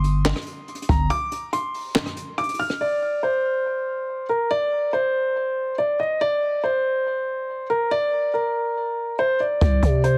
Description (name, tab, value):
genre	hip hop, trap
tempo	141 BPM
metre	4/4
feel	half-time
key	unclear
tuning	A4 = 440 Hz
part	dark baby grand piano	melody	0.0-10.2 s	Bb4 to F6	-24 LUFS	equal	delay
part	growling 808-style bass	bass	0.0-1.1, 9.6-10.2 s	G1 to C3	-22 LUFS	equal	none
part	jazz brush drum kit	drums	0.0-2.8, 9.6-10.1 s	handclaps, hi-hat, kick drum, rim click, snare drum	-26 LUFS	equal	none
room	light reverb, small room ambience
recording	heavily compressed radio sound, multiband compression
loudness	-23 LUFS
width	mono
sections	0.0-2.8 A section; 2.8-9.6 B section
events	break 1.1-2.8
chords	0.0 Gsus4; 2.8 N.C.; 9.6 C5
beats	0.25 0.68 | 1.10 1.53 1.96 2.38 | 2.81 3.23 3.66 4.08 | 4.51 4.93 5.36 5.78 | 6.21 6.63 7.06 7.49 | 7.91 8.34 8.76 9.19 | 9.61 10.04